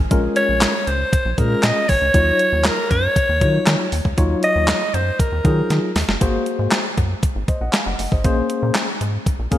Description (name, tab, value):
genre	early-eighties boogie funk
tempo	118 BPM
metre	4/4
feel	straight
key	Eb dorian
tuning	A4 = 440 Hz
part	rubbery square bass	bass	0.0-9.5 s	Gb1 to Eb3	-21 LUFS	equal	none
part	tine electric piano	accompaniment	0.1-9.6 s	Gb3 to Ab5	-24 LUFS	left 2 dB	medium tremolo
part	crisp 8-bit digital drum machine	drums	0.1-9.6 s	handclaps, hi-hat, kick drum, snare drum	-20 LUFS	equal	gated reverb
part	raspy alto saxophone	melody	0.4-6.0 s	Bb4 to Eb5	-20 LUFS	equal	digital delay
room	light reverb, digital ambience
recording	bright 1980s-style digital production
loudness	-16 LUFS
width	side -12 dB against mid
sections	0.0-6.2 A section; 6.2-9.6 B section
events	drum fill 5.7-6.2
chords	0.1 Bbm7; 2.1 Ebm9; 6.2 Ab9; 8.2 Bbm9